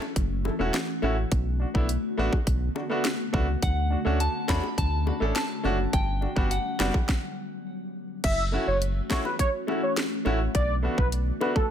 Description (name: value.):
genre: dancehall.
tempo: 104 BPM.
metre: 4/4.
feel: straight.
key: F# phrygian.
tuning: A4 = 440 Hz.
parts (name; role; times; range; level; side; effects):
ethereal airy pad; sustained chords; 0.0-11.7 s; D3 to F#4; -33 LUFS; left 2 dB; ensemble chorus, built-in reverb, sidechain pumping.
bongos; percussion; 0.0-11.7 s; none; -38 LUFS; left 7 dB; none.
round analog bass; bass; 0.2-11.3 s; E1 to E2; -27 LUFS; equal; none.
island pop drum kit; drums; 0.2-11.7 s; crash cymbal, hi-hat, kick drum, snare drum; -27 LUFS; equal; none.
clear concert grand piano; accompaniment; 0.4-11.5 s; G3 to A4; -30 LUFS; equal; sidechain pumping.
soft synth bell; second line; 3.6-7.0 s; F#5 to B5; -33 LUFS; equal; chorus, digital delay.
warm velvety synth lead; melody; 8.2-11.7 s; A4 to E5; -29 LUFS; right 1 dB; chorus.
room: digital ambience.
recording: none.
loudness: -24 LUFS.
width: side -9 dB against mid.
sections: 0.0-8.2 A section; 8.2-11.7 B section.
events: stop 7.1-8.2.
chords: 0.0 F#m7; 1.3 Bm7; 3.6 Dmaj7; 5.9 Gmaj7; 8.2 F#m7; 10.5 Bm7.